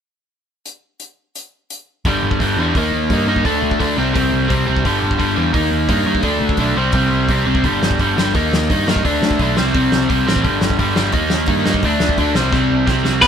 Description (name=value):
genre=punk rock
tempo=172 BPM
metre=4/4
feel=straight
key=unclear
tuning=A4 = 439 Hz
part: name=loose indie drum kit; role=drums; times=0.7-13.3 s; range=crash cymbal, hi-hat, kick drum, snare drum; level=-21 LUFS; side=equal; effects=none
part: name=picked electric bass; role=bass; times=2.0-13.3 s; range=G1 to G2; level=-21 LUFS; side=equal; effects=none
part: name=overdriven electric guitar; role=riff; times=2.1-13.3 s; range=G2 to Eb4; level=-16 LUFS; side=equal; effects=none
part: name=overdriven electric guitar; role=melody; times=13.2-13.3 s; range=B3 to B4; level=-7 LUFS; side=equal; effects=none
room=light reverb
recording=band playing live in one room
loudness=-14 LUFS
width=side -8 dB against mid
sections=0.7-2.0 A section; 2.0-13.2 B section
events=drum fill 12.5-13.2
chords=0.7 N.C.; 2.0 G5; 2.7 Eb; 3.4 D5; 4.0 C5; 4.8 G5; 5.5 Eb; 6.2 D5; 6.8 C5; 7.6 G5; 8.3 Eb; 9.0 D5; 9.6 C5; 10.4 G5; 11.1 Eb; 11.8 D5; 12.4 C5